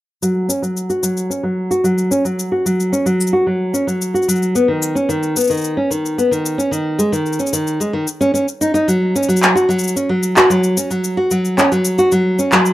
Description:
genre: folktronica.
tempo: 111 BPM.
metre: 4/4.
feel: straight.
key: unclear.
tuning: A4 = 440 Hz.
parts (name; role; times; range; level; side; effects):
nylon-string guitar; arpeggios; 0.2-12.7 s; D#3 to F#4; -15 LUFS; equal; low-pass filter.
electronic shaker and handclaps; drums; 0.2-12.7 s; none; -18 LUFS; left 1 dB; overdrive.
room: moderate studio reverb, RT60 0.5 s.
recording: rough home demo mix.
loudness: -14 LUFS.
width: side -15 dB against mid.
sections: 0.2-12.7 A section.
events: filter sweep on nylon-string guitar 0.2-12.7.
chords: none.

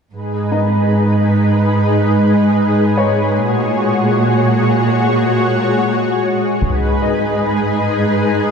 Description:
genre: cinematic, hybrid orchestral and electronic film score.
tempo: 74 BPM.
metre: 4/4.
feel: straight.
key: G# minor.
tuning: A4 = 439 Hz.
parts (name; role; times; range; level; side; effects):
analog string pad; sustained chords; 0.1-8.5 s; G#3 to C#5; -16 LUFS; left 2 dB; ensemble chorus.
warm symphonic cello section; bass; 0.1-8.5 s; G#2 to A#2; -16 LUFS; right 2 dB; none.
bright baby grand piano; texture; 0.5-8.5 s; D#4 to D#5; -25 LUFS; left 4 dB; tape echo.
taiko ensemble; drums; 6.6-8.2 s; none; -19 LUFS; equal; none.
room: wet concert hall reverb, RT60 2.1 s.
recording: dark, warm production.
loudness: -12 LUFS.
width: side -6 dB against mid.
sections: 0.1-6.6 A section; 6.6-8.5 B section.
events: build-up 6.6-8.5; filter sweep 6.6-8.5.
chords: 0.1 G#m; 3.4 F#add9/A#; 6.6 G#m.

